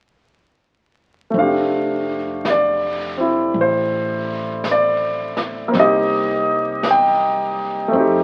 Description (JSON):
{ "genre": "jazz ballad", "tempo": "55 BPM", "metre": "4/4", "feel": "swing 66% on 8ths", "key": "F major", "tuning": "A4 = 444 Hz", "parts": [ { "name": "clear grand piano", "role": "accompaniment", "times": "1.3-8.2 s", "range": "A3 to G5", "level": "-19 LUFS", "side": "equal", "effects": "none" }, { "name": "upright bass", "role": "bass", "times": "1.3-8.2 s", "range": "F1 to F2", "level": "-32 LUFS", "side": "equal", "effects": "none" }, { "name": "jazz brush drum kit", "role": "drums", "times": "1.3-8.2 s", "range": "brushed snare drum, hi-hat, snare drum", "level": "-31 LUFS", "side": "equal", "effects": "none" } ], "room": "moderate studio ambience, RT60 0.5 s", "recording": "very old 78 rpm record, vinyl crackle", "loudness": "-19 LUFS", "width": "mono", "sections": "1.3-8.2 A section", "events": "none", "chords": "1.3 F6; 5.7 Cm7" }